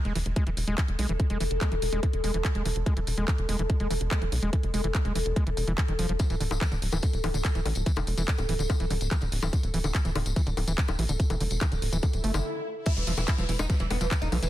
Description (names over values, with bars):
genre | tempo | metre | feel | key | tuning
psychedelic trance | 144 BPM | 4/4 | straight | unclear | A4 = 440 Hz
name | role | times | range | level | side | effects
evolving wavetable pad | sustained chords | 0.2-14.5 s | A4 | -36 LUFS | left 1 dB | phaser, built-in reverb, sidechain pumping
overdriven acid bass | riff | 0.1-14.5 s | D3 to A3 | -34 LUFS | right 1 dB | distortion, auto-pan, cassette tape, sidechain pumping, digital delay
tight sequencer bass | bass | 0.1-14.5 s | D1 to B1 | -29 LUFS | equal | none
garage drum kit | drums | 0.1-14.5 s | bongos, crash cymbal, handclaps, hi-hat | -34 LUFS | left 2 dB | none
electronic kick drum | drums | 0.4-14.2 s | none | -26 LUFS | equal | none
tambourine | percussion | 6.2-14.5 s | none | -40 LUFS | left 4 dB | none
swell and downlifter | sound effects | 12.2-14.5 s | none | -37 LUFS | left 2 dB | none
oud | melody | 12.9-14.5 s | E3 to E4 | -33 LUFS | right 2 dB | phaser, sidechain pumping, ping-pong delay
room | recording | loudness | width
digital ambience | dense, heavily limited modern master | -25 LUFS | side -14 dB against mid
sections
0.0-12.9 A section; 12.9-14.5 B section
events
swell 12.2-12.9; stop 12.4-12.9; drop 12.9-14.5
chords
0.0 E5; 6.2 D5; 12.9 E5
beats
0.36 0.78 | 1.20 1.61 2.03 2.45 | 2.86 3.28 3.70 4.11 | 4.53 4.95 5.36 5.78 | 6.20 6.61 7.03 7.45 | 7.86 8.28 8.70 9.11 | 9.53 9.95 10.36 10.78 | 11.20 11.61 12.03 12.45 | 12.86 13.28 13.70 14.11